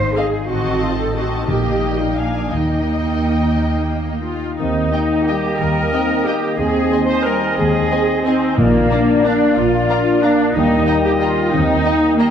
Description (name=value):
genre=classical, orchestral ballroom waltz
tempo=164-197 BPM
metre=3/4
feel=rubato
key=Eb major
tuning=A4 = 441 Hz
part: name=concert harp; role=arpeggios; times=0.0-12.3 s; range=Ab2 to Eb5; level=-24 LUFS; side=left 8 dB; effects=none
part: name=muted symphonic cello section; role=bass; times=0.0-11.8 s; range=Eb2 to C5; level=-24 LUFS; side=right 2 dB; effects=none
part: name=muted chamber violin section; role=melody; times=0.2-12.3 s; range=F5 to Bb5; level=-30 LUFS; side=left 2 dB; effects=none
part: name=muted symphonic violin section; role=second line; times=0.2-12.3 s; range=C5 to G5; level=-29 LUFS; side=left 2 dB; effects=none
part: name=muted symphonic viola section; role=accompaniment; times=0.2-12.3 s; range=Bb3 to C5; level=-19 LUFS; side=right 1 dB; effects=none
part: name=muted symphonic double bass section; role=bass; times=0.5-11.8 s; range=A1 to Eb2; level=-23 LUFS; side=right 3 dB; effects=none
part: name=timpani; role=percussion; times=1.5-2.0, 8.6-9.0 s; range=Bb2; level=-24 LUFS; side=equal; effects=none
part: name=bright clarinet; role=second line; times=4.6-12.2 s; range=D5 to Eb5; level=-25 LUFS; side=left 1 dB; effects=none
part: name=mellow hollow large flute ensemble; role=second line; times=4.6-12.3 s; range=F5 to Ab5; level=-27 LUFS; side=left 1 dB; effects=none
part: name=mellow bassoon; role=accompaniment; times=4.6-12.2 s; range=Bb3 to C4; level=-25 LUFS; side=right 1 dB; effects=none
part: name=mellow French horn section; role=sustained chords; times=4.6-12.3 s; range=G3 to F4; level=-22 LUFS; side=left 2 dB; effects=none
room=wet concert hall reverb, RT60 1.9 s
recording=dark, warm production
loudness=-14 LUFS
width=side -8 dB against mid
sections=0.0-4.6 A section; 4.6-12.3 B section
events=none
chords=0.5 Adim7; 1.5 Eb/Bb; 2.2 Bb7; 2.5 Eb; 6.6 Ab/Eb; 8.6 Bb; 10.6 Eb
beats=0.16 | 0.48 0.81 1.16 | 1.49 1.82 2.17 | 2.51 2.85 3.21 | 3.55 3.90 4.26 | 4.60 4.93 5.28 | 5.60 5.93 6.27 | 6.59 6.92 7.26 | 7.59 7.92 8.26 | 8.59 8.91 9.25 | 9.57 9.90 10.23 | 10.55 10.88 11.21 | 11.53 11.86 12.19